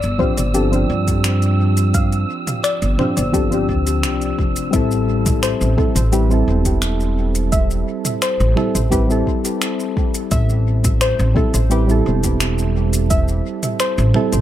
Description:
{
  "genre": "sunset chillout",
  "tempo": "86 BPM",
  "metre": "4/4",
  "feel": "straight",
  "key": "A minor",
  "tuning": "A4 = 436 Hz",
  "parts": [
    { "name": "soft round pluck", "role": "arpeggios", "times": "0.0-14.4 s", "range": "G4 to F5", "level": "-25 LUFS", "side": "left 2 dB", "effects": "analog chorus, dub echo" },
    { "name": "upright bass", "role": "bass", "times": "0.0-14.4 s", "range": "E1 to G2", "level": "-18 LUFS", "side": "equal", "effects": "none" },
    { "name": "deep house drum kit", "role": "drums", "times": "0.0-14.4 s", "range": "finger snaps, hi-hat, shaker, toms", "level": "-24 LUFS", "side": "equal", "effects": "small room ambience" },
    { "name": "wind-like tuned noise texture", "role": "texture", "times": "0.0-4.8 s", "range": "E6", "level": "-30 LUFS", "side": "right 5 dB", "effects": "built-in reverb" },
    { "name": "soft electric-piano-like synth keys", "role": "accompaniment", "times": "0.2-14.4 s", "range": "F3 to B4", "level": "-21 LUFS", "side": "moving between left 8 dB and right 9 dB", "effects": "chorus, auto-pan, dub echo" },
    { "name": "electronic kick drum", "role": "drums", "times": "0.2-13.3 s", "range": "none", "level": "-20 LUFS", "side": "equal", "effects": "small room ambience" }
  ],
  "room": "light reverb, digital ambience",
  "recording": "echo-heavy mix",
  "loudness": "-15 LUFS",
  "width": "side -12 dB against mid",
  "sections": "0.0-4.7 A section; 4.7-14.4 B section",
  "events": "none",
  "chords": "0.0 G7sus4; 4.7 Am7"
}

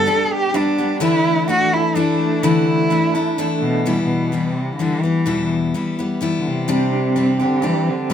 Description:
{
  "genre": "acoustic folk duo or small band",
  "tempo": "127 BPM",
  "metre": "3/4",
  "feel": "straight",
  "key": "E minor",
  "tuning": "A4 = 440 Hz",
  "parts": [
    { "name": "warm cello", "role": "melody", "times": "0.0-8.1 s", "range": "B2 to A4", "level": "-20 LUFS", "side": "equal", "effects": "none" },
    { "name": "picked steel-string acoustic guitar", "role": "accompaniment", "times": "0.0-8.1 s", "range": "E2 to G4", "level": "-19 LUFS", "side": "left 3 dB", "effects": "none" },
    { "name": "electric guitar through a small old amp", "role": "arpeggios", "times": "0.0-3.9, 6.7-8.1 s", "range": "E3 to A4", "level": "-23 LUFS", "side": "right 5 dB", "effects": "tremolo" }
  ],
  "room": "wet studio ambience, RT60 0.5 s",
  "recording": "none",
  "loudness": "-16 LUFS",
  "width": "side -9 dB against mid",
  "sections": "0.0-3.9 A section; 3.9-8.1 B section",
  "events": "none",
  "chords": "0.0 G; 1.0 Dsus2; 3.9 Em; 6.7 Csus2"
}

